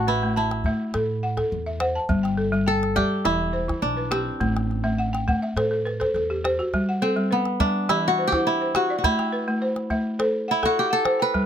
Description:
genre	west african traditional, West African string and xylophone music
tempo	104 BPM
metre	4/4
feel	straight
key	unclear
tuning	A4 = 438 Hz
part	kora	melody	0.0-11.5 s	B3 to B4	-24 LUFS	right 1 dB	none
part	balafon	arpeggios	0.0-11.5 s	E3 to A5	-24 LUFS	equal	none
part	upright bass	bass	0.0-6.6 s	E1 to A2	-28 LUFS	equal	none
part	calabash	percussion	0.2-11.5 s	none	-29 LUFS	equal	none
room	little or no reverb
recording	close, detailed microphones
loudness	-21 LUFS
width	side -9 dB against mid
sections	0.0-6.7 A section; 6.7-11.5 B section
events	balafon fill 4.8-6.7; kora solo 6.7-11.5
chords	0.0 Am; 2.1 G5; 3.3 Em; 4.4 Am; 6.7 G; 7.9 Em; 9.0 Am

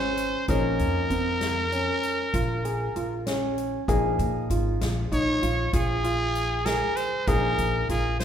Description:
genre	progressive instrumental, band music in an uneven meter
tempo	194 BPM (eighths)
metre	11/8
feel	straight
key	unclear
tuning	A4 = 435 Hz
part	growling trumpet	melody	0.0-8.2 s	Ab4 to Db5	-27 LUFS	equal	none
part	warm baby grand piano	accompaniment	0.0-8.2 s	F3 to Ab4	-33 LUFS	left 3 dB	none
part	dark concert grand piano	arpeggios	0.0-8.2 s	C4 to Ab4	-28 LUFS	right 1 dB	none
part	upright bass	bass	0.0-8.2 s	Ab1 to Bb2	-29 LUFS	equal	none
part	soft-mallet drum kit	drums	0.2-8.2 s	hi-hat, kick drum, snare drum	-32 LUFS	equal	none
room	moderate recital hall reverb, RT60 1.3 s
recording	recorded in a church or concert hall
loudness	-23 LUFS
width	side -9 dB against mid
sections	0.0-3.9 A section; 3.9-8.2 B section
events	none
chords	0.5 Bbm7; 3.9 Db6 (rootless); 7.3 Fm7/Bb

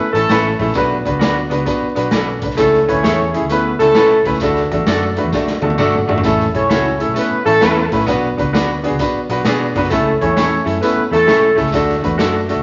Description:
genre	uptempo 1960s-style soul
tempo	131 BPM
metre	4/4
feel	swing 65% on 8ths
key	A major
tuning	A4 = 440 Hz
part	warm horn section	second line	0.0-11.6 s	A3 to C#5	-18 LUFS	equal	none
part	clear concert grand piano	accompaniment	0.0-12.6 s	A3 to A5	-19 LUFS	equal	none
part	vintage muted fingered electric bass	bass	0.0-12.6 s	F#1 to B2	-26 LUFS	equal	none
part	raw garage drum kit	drums	0.1-12.6 s	hi-hat, kick drum, snare drum, toms	-24 LUFS	equal	none
part	electric guitar at the edge of break-up	stabs	0.3-12.3 s	E4 to E5	-27 LUFS	equal	none
part	tambourine	percussion	0.3-12.3 s	none	-40 LUFS	equal	none
room	wet large studio reverb, RT60 1.2 s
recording	vinyl crackle, nothing above 7.5 kHz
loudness	-15 LUFS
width	mono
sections	0.0-12.6 A section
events	drum fill 5.3-6.2; grand piano fill 5.3-6.2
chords	0.0 A; 0.8 Bm; 2.6 A/C#; 4.4 D; 6.2 A; 8.1 Bm; 9.9 A/C#; 11.7 D

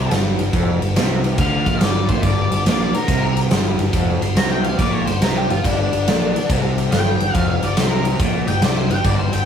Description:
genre	blues rock power trio and southern rock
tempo	141 BPM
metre	4/4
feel	swing 66% on 8ths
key	G minor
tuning	A4 = 437 Hz
part	octave-fuzz lead guitar	melody	0.0-9.5 s	D4 to C6	-24 LUFS	left 2 dB	distortion
part	crunchy overdriven guitar	riff	0.0-9.5 s	F2 to D3	-23 LUFS	right 1 dB	none
part	growling fingered electric bass	bass	0.0-9.5 s	F1 to D2	-22 LUFS	equal	overdrive
part	big rock drum kit	drums	0.1-9.4 s	kick drum, ride cymbal, snare drum	-19 LUFS	equal	none
room	moderate stone room reverb, RT60 0.9 s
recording	rough rehearsal-room recording, tube saturation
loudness	-16 LUFS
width	side -8 dB against mid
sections	0.0-9.5 A section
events	lead electric guitar solo 0.0-9.5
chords	0.0 Gm

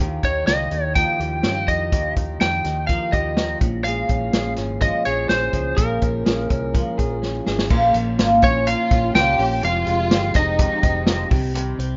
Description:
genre	jangly indie pop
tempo	125 BPM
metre	4/4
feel	straight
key	Bb dorian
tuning	A4 = 436 Hz
part	picked twelve-string acoustic guitar	accompaniment	0.0-12.0 s	Bb2 to G4	-28 LUFS	equal	none
part	electric guitar through a small old amp	arpeggios	0.0-12.0 s	F2 to Ab4	-29 LUFS	equal	tape echo
part	vintage muted fingered electric bass	bass	0.0-12.0 s	F1 to G2	-29 LUFS	equal	none
part	lightly driven lead guitar	melody	0.2-11.3 s	Bb4 to G5	-24 LUFS	equal	none
part	vintage drum kit	drums	0.2-11.9 s	crash cymbal, hi-hat, kick drum, snare drum	-24 LUFS	equal	none
part	rich studio violin section	second line	8.4-11.3 s	Db4 to G4	-30 LUFS	equal	none
room	light reverb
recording	rough home demo mix, nothing above 7.5 kHz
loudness	-20 LUFS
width	mono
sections	0.0-7.7 A section; 7.7-12.0 B section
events	drum fill 7.2-7.7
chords	0.0 Ebadd9; 3.6 Bbm7; 7.7 Bbm; 9.6 Fmadd9; 11.3 Cm

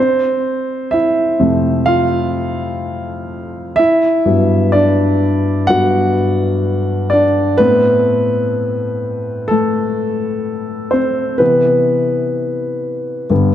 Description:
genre	pop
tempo	63 BPM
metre	4/4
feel	straight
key	unclear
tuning	A4 = 440 Hz
part	dark grand piano	solo	0.0-13.5 s	F2 to F#5	-13 LUFS	equal	none
room	wet concert hall reverb, RT60 2.1 s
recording	none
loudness	-13 LUFS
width	side -10 dB against mid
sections	0.0-13.5 A section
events	grand piano solo 0.0-13.5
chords	0.0 F; 3.8 Gmaj7; 7.6 Amadd9; 11.4 Cmaj7

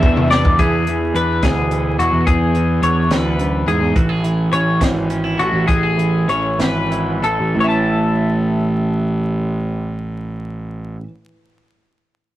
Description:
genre	math rock and midwest emo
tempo	60-71 BPM (dotted quarters)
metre	6/8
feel	straight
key	A major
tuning	A4 = 440 Hz
part	twelve-string electric guitar	arpeggios	0.0-11.1 s	F#4 to A5	-19 LUFS	left 2 dB	none
part	biting overdriven guitar	riff	0.0-0.6 s	E3 to G#4	-20 LUFS	right 2 dB	none
part	fuzz picked electric bass	bass	0.0-11.0 s	G#1 to E2	-19 LUFS	equal	overdrive
part	compact cocktail drum kit	drums	0.0-7.4 s	hi-hat, kick drum, snare drum, toms	-18 LUFS	equal	none
part	twangy electric guitar	accompaniment	0.6-11.2 s	E2 to A4	-21 LUFS	right 2 dB	spring reverb
room	moderate studio reverb, RT60 0.5 s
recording	rough rehearsal-room recording, vinyl crackle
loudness	-15 LUFS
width	side -14 dB against mid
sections	0.6-7.6 A section; 7.6-11.5 B section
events	drum fill 0.0-0.6; slowing down 4.0-7.6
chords	0.0 E7; 4.0 Amaj7; 7.6 A

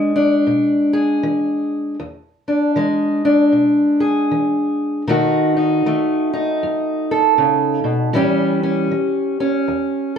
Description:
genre	blues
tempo	78 BPM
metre	4/4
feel	swing 61% on 8ths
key	E mixolydian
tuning	A4 = 440 Hz
part	fingerpicked steel-string acoustic guitar	solo	0.0-10.2 s	E2 to A4	-15 LUFS	equal	none
room	wet studio reverb, RT60 0.6 s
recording	heard from further back in the room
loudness	-15 LUFS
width	side -7 dB against mid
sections	0.0-10.2 A section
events	none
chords	0.0 E7; 5.1 B7; 8.1 A7

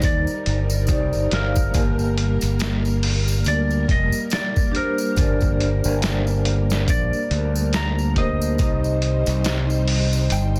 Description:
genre	trip hop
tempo	70 BPM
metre	4/4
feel	swing 59% on 16ths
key	G minor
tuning	A4 = 440 Hz
part	clean lap steel guitar	melody	0.0-10.6 s	Bb4 to Bb5	-31 LUFS	equal	vintage 12-bit sampler grit, tape echo
part	vibraphone with medium mallets	accompaniment	0.0-10.6 s	Bb3 to Eb5	-29 LUFS	equal	tremolo, tape echo
part	string machine, cellos	sustained chords	0.0-10.6 s	G3 to C5	-32 LUFS	equal	ensemble chorus
part	growling fingered electric bass	bass	0.0-10.6 s	F1 to Eb2	-24 LUFS	equal	overdrive
part	trip hop sampler-style drum kit	drums	0.0-10.5 s	hi-hat, kick drum, snare drum	-26 LUFS	equal	vintage 12-bit sampler grit
part	tambourine	percussion	0.0-10.6 s	none	-38 LUFS	equal	none
room	digital ambience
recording	dense, heavily limited modern master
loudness	-21 LUFS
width	mono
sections	0.0-10.6 A section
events	none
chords	0.0 Cmadd9; 1.7 Gm; 8.6 Cm

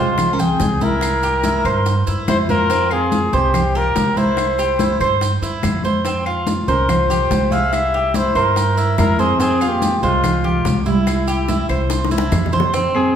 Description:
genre	latin, Cuban son and guajira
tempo	143 BPM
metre	4/4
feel	straight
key	unclear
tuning	A4 = 444 Hz
part	breathy trumpet	melody	0.0-13.2 s	E4 to F5	-20 LUFS	left 2 dB	none
part	nylon-string guitar	second line	0.0-13.2 s	G3 to Ab4	-24 LUFS	right 2 dB	none
part	Cuban tres	arpeggios	0.0-13.1 s	C4 to G5	-21 LUFS	right 3 dB	none
part	upright bass	bass	0.0-13.2 s	C2 to G2	-21 LUFS	equal	none
part	bongos	percussion	0.2-12.9 s	none	-28 LUFS	left 4 dB	none
part	claves	percussion	0.2-13.2 s	none	-35 LUFS	left 6 dB	none
part	congas	percussion	0.2-13.2 s	none	-23 LUFS	left 1 dB	none
part	maracas	percussion	0.2-12.9 s	none	-34 LUFS	right 4 dB	none
room	wet large studio reverb, RT60 1.3 s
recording	band playing live in one room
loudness	-15 LUFS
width	side -8 dB against mid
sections	0.0-12.7 A section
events	drum fill 11.9-12.7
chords	0.0 C

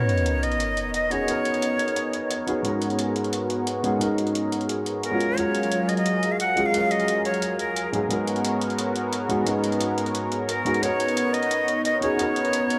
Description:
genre	liquid drum and bass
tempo	176 BPM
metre	4/4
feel	straight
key	G# dorian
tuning	A4 = 438 Hz
part	breathy bright jazz flute	melody	0.0-2.5, 5.0-7.9, 10.5-12.8 s	A#4 to F#5	-28 LUFS	equal	tape echo
part	dark baby grand piano	accompaniment	0.0-12.8 s	G#2 to C#5	-29 LUFS	equal	lush chorus, low-pass filter, diffuse ambient delay
part	lush unison pad	sustained chords	0.0-12.8 s	F#3 to E#5	-30 LUFS	equal	chorus
part	sub drop	sound effects	0.0-1.3 s	none	-29 LUFS	equal	none
part	electronic hi-hat	drums	0.1-12.8 s	none	-36 LUFS	equal	none
room	wet plate reverb, RT60 2.2 s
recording	dreamy mix soaked in reverb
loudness	-24 LUFS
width	mono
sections	0.0-12.8 A section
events	impact 0.0-1.3; filter sweep on analog synth pad 0.0-12.8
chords	0.0 Bmaj9; 2.6 G#m11; 5.2 F#maj9; 7.9 G#m11; 10.8 Bmaj9

